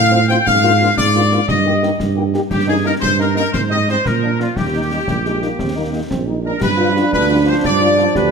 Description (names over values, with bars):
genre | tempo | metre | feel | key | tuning
military-style march for wind band | 117 BPM (dotted quarters) | 6/8 | straight | Eb major | A4 = 440 Hz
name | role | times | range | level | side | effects
bright trumpet section | melody | 0.0-8.3 s | F4 to G5 | -19 LUFS | left 2 dB | none
clear woodwind section | second line | 0.0-8.3 s | F4 to G5 | -20 LUFS | left 3 dB | none
mellow tuba | bass | 0.0-8.3 s | Bb1 to Bb2 | -18 LUFS | right 5 dB | none
warm French horn section | accompaniment | 0.1-8.0 s | F3 to G4 | -23 LUFS | left 5 dB | none
concert snare drum, concert bass drum and clash cymbals | drums | 0.3-8.3 s | none | -24 LUFS | left 2 dB | none
warm euphonium | second line | 5.1-8.3 s | G3 to G4 | -20 LUFS | right 5 dB | none
clear trombone section | sustained chords | 6.6-8.3 s | F3 to D4 | -21 LUFS | right 2 dB | none
room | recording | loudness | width
moderate scoring stage reverb, RT60 1.8 s | none | -13 LUFS | side -5 dB against mid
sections
0.0-6.6 A section; 6.6-8.3 B section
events
none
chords
0.5 Bb7/Ab; 1.5 Eb/G; 2.5 Eb7/G; 3.5 Abmaj7; 4.1 Bb; 4.6 Eb; 6.6 G7